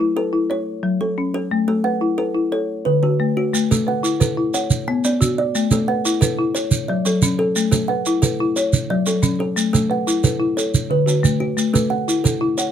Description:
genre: southern african traditional, mbira-style interlocking cycle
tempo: 119 BPM (dotted quarters)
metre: 12/8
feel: straight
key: A major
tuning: A4 = 440 Hz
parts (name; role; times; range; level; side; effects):
- folk marimba with medium mallets; arpeggios; 0.0-12.7 s; D3 to F#5; -20 LUFS; left 3 dB; none
- kalimba; arpeggios; 0.2-12.7 s; D3 to G#5; -23 LUFS; right 3 dB; none
- shekere; percussion; 3.5-12.7 s; none; -20 LUFS; right 4 dB; none
room: light reverb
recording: close, detailed microphones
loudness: -17 LUFS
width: side -9 dB against mid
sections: 0.0-11.6 A section; 11.6-12.7 B section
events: none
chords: 0.0 A5; 0.5 F#m; 1.5 A5; 2.5 D; 3.5 A5; 4.5 Bm; 5.5 A5; 6.6 F#m; 7.6 A5; 8.6 F#m; 9.6 A5; 10.6 D; 11.6 A5

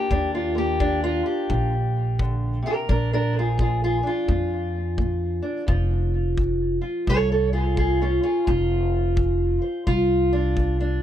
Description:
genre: acoustic country blues, solo or duo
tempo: 86 BPM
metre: 4/4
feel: swing 62% on 8ths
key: unclear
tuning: A4 = 439 Hz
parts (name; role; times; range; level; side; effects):
- fingerpicked steel-string acoustic guitar; melody; 0.0-11.0 s; F2 to Db5; -23 LUFS; equal; tape echo
- upright bass; bass; 0.1-11.0 s; F1 to F2; -24 LUFS; equal; none
- kick drum; drums; 0.1-10.8 s; none; -26 LUFS; left 1 dB; none
room: little or no reverb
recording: none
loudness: -20 LUFS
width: side -10 dB against mid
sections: 0.0-11.0 A section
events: none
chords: 0.0 Eb; 2.9 Bb; 5.7 F5

